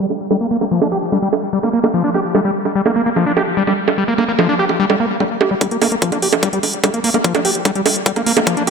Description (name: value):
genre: psychedelic trance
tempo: 147 BPM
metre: 4/4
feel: straight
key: G minor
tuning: A4 = 440 Hz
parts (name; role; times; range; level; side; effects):
- overdriven acid bass; riff; 0.0-8.7 s; F3 to G4; -16 LUFS; left 1 dB; distortion, auto-pan, sidechain pumping, ping-pong delay
- electronic bongos and hi-hat; drums; 0.1-8.7 s; none; -19 LUFS; right 6 dB; low-pass filter on hats, low-pass filter on perc, low-pass filter on snare, low-pass filter on room
- electronic kick drum; drums; 5.6-8.6 s; none; -16 LUFS; equal; overdrive, high-pass filter on kick
- tight sequencer bass; bass; 5.7-8.7 s; G1 to G2; -35 LUFS; equal; none
room: wet lush hall reverb, RT60 1.8 s, digital ambience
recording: dreamy mix soaked in reverb, low-pass filter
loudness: -14 LUFS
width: side -5 dB against mid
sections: 0.0-5.6 A section; 5.6-8.7 B section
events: filter sweep on acid bass 0.0-5.6, 5.6-8.7; filter sweep 0.0-5.6; build-up 5.6-8.7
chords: 0.0 G5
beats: 0.30 | 0.71 1.12 1.53 1.94 | 2.35 2.75 3.16 3.57 | 3.98 4.39 4.79 5.20 | 5.61 6.02 6.43 6.84 | 7.24 7.65 8.06 8.47